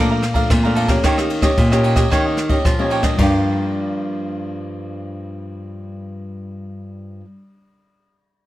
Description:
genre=samba and choro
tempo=112 BPM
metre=4/4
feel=straight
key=G minor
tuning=A4 = 439 Hz
part: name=cavaquinho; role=accompaniment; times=0.0-7.3 s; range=Eb4 to Bb5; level=-23 LUFS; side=right 3 dB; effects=none
part: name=nylon-string guitar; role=accompaniment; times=0.0-7.3 s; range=F2 to G4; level=-23 LUFS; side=left 2 dB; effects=none
part: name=nylon-string guitar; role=bass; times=0.0-7.2 s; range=G2 to Bb3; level=-22 LUFS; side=equal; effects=none
part: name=jazz brush drum kit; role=drums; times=0.2-3.3 s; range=crash cymbal, kick drum, ride cymbal, rim click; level=-19 LUFS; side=equal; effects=none
room=light reverb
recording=none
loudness=-15 LUFS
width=side -15 dB against mid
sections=0.0-3.2 A section; 3.2-7.5 B section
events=none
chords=0.0 Bbmaj7; 1.0 Eb7; 3.2 Gm7

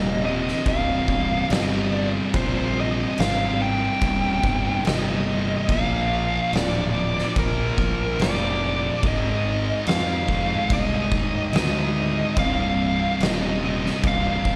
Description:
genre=stoner and doom metal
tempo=72 BPM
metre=4/4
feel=straight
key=C minor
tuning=A4 = 440 Hz
part: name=fuzz lead guitar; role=melody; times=0.0-14.6 s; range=Bb4 to G5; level=-28 LUFS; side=equal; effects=distortion, delay
part: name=thick fuzz guitar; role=riff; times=0.0-14.6 s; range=C2 to Bb3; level=-28 LUFS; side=equal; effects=distortion
part: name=fuzz fingered electric bass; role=bass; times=0.0-14.6 s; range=C1 to F2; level=-29 LUFS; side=equal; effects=overdrive
part: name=oversized low-tuned drum kit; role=drums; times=0.5-14.6 s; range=crash cymbal, kick drum, snare drum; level=-29 LUFS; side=equal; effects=none
room=studio reverb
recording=live gig heard through the venue's PA, recital hall reverb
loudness=-22 LUFS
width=mono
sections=0.0-14.6 A section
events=none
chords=0.0 Cm; 5.7 Bb; 9.0 Ab5; 12.4 Cm

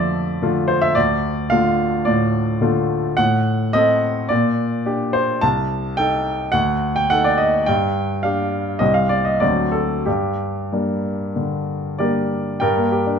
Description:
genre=classical, romantic character piece for solo piano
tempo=88-112 BPM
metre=4/4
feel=rubato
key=D minor, G minor from 3.2 s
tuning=A4 = 442 Hz
part: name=clear baby grand piano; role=solo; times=0.0-13.2 s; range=C2 to A5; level=-17 LUFS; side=equal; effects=none
room=moderate large studio reverb, RT60 1.4 s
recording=dark, warm production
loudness=-17 LUFS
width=side -6 dB against mid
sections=0.0-12.6 A section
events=none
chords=0.0 Dm/F; 1.0 Dm; 3.2 Adim7; 4.3 Gm/Bb; 5.4 Am7b5/C; 6.5 D5; 7.7 G5; 8.8 C5; 9.4 D7; 10.1 Gm

